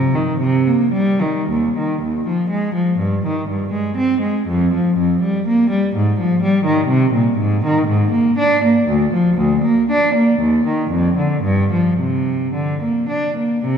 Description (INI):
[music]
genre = classical, baroque-style suite movement for unaccompanied cello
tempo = 104-130 BPM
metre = 3/4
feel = rubato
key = Eb major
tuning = A4 = 440 Hz
[part]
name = dark cello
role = solo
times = 0.0-13.8 s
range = D2 to D4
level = -15 LUFS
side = equal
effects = none
[sound]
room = wet church reverb, RT60 3.4 s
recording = minimal, uncompressed stereo recording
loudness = -15 LUFS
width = side -7 dB against mid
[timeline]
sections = 0.0-1.5 A section; 1.5-13.6 A section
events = none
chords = none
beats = 0.39 0.93 | 1.49 2.01 2.50 | 2.99 3.48 3.96 | 4.47 4.97 5.45 | 5.95 6.42 6.88 | 7.38 7.88 8.38 | 8.88 9.38 9.88 | 10.41 10.93 11.45 | 12.00 12.55 13.10 | 13.64